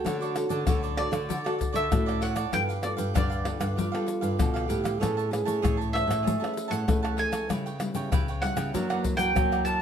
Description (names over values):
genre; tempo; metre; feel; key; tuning
samba and choro; 97 BPM; 4/4; straight; unclear; A4 = 440 Hz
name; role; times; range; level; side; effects
dark trombone; second line; 0.0-5.8 s; F4 to A4; -31 LUFS; right 4 dB; none
cavaquinho; accompaniment; 0.0-9.8 s; D4 to A5; -36 LUFS; right 7 dB; none
nylon-string guitar; bass; 0.0-9.8 s; G2 to A3; -31 LUFS; equal; none
nylon-string guitar; accompaniment; 0.1-9.8 s; F#2 to B4; -34 LUFS; left 2 dB; none
egg shaker, surdo, pandeiro and tamborim; percussion; 0.1-9.8 s; none; -29 LUFS; left 3 dB; none
mandolin; melody; 1.0-9.8 s; D5 to A5; -30 LUFS; right 2 dB; none
room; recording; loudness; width
light reverb; none; -25 LUFS; side -8 dB against mid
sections
0.0-9.8 A section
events
none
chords
0.0 Dmaj7; 2.5 G9; 5.0 Amaj9; 7.5 C#m7b5; 8.7 F#aug7